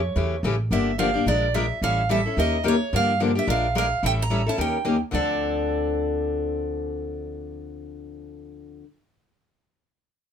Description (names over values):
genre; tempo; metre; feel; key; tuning
acoustic string swing (jazz manouche); 217 BPM; 4/4; swing 58% on 8ths; D minor; A4 = 441 Hz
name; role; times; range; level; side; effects
picked steel-string acoustic guitar; melody; 0.0-8.8 s; C#5 to Bb5; -26 LUFS; right 4 dB; none
upright bass; bass; 0.0-8.8 s; G1 to G2; -28 LUFS; right 1 dB; none
picked steel-string acoustic guitar; accompaniment; 0.2-8.8 s; C#3 to Bb4; -25 LUFS; left 4 dB; none
room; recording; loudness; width
light reverb; minimal, uncompressed stereo recording; -21 LUFS; side -8 dB against mid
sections
0.7-5.1 A section; 5.1-7.3 B section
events
none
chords
0.0 A7; 0.7 Gm7; 1.3 Bb7; 1.8 A7; 2.4 Eb7; 2.9 Gm7; 3.5 Bb7; 4.0 A7b9; 4.6 Eb7; 5.1 Dm7